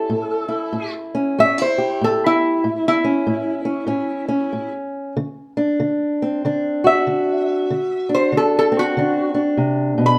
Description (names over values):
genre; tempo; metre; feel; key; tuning
acoustic country blues, solo or duo; 95 BPM; 4/4; swing 61% on 8ths; unclear; A4 = 440 Hz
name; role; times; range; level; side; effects
lap resonator guitar; melody; 0.0-10.2 s; E4 to B5; -21 LUFS; equal; plate reverb
fingerpicked acoustic archtop guitar; accompaniment; 0.0-10.2 s; A2 to G4; -22 LUFS; equal; none
room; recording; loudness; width
wet studio reverb, RT60 0.6 s; dark, warm production; -20 LUFS; mono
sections
0.0-10.2 A section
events
resonator guitar played with a steel bar solo 0.0-10.2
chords
0.0 A7; 5.2 D7